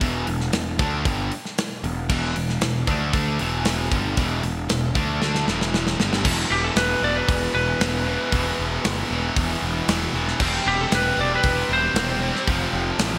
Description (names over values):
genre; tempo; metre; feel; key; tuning
hard rock; 116 BPM; 4/4; straight; E phrygian; A4 = 440 Hz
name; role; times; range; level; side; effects
distorted electric guitar; riff; 0.0-13.2 s; E2 to D4; -32 LUFS; equal; distortion
distorted electric guitar; riff; 0.0-13.2 s; E2 to D4; -31 LUFS; equal; overdrive
fuzz picked electric bass; bass; 0.0-13.2 s; E1 to D2; -28 LUFS; equal; overdrive
tight metal drum kit; drums; 0.0-13.1 s; crash cymbal, hi-hat, kick drum, snare drum; -28 LUFS; equal; gated reverb
heavy high-gain guitar; riff; 6.2-13.2 s; E2 to C4; -32 LUFS; equal; none
lightly driven lead guitar; melody; 6.5-13.2 s; G4 to D5; -26 LUFS; equal; digital delay
room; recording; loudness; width
moderate lush hall reverb, RT60 2.8 s; bright 1980s-style digital production; -22 LUFS; mono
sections
0.0-6.3 A section; 6.3-13.2 B section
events
drum fill 5.2-6.3; lead electric guitar solo 6.3-13.2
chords
0.0 Em; 6.3 E5; 10.4 C/E; 12.5 F